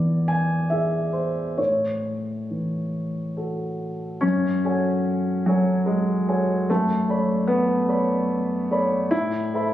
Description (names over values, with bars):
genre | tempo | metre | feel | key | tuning
classical, impressionist solo piano | 64-75 BPM | 3/4 | rubato | A major | A4 = 439 Hz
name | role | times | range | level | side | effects
warm concert grand piano | solo | 0.0-9.7 s | E2 to B5 | -21 LUFS | equal | none
room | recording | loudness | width
moderate scoring stage reverb, RT60 2.2 s | recorded on a phone in the room, club reverb, compression | -21 LUFS | side -12 dB against mid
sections
0.0-4.2 A section; 4.2-9.7 B section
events
none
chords
0.0 Eaug7; 1.6 A6; 4.2 F#madd9; 6.7 Bm9/F#; 9.1 Amadd9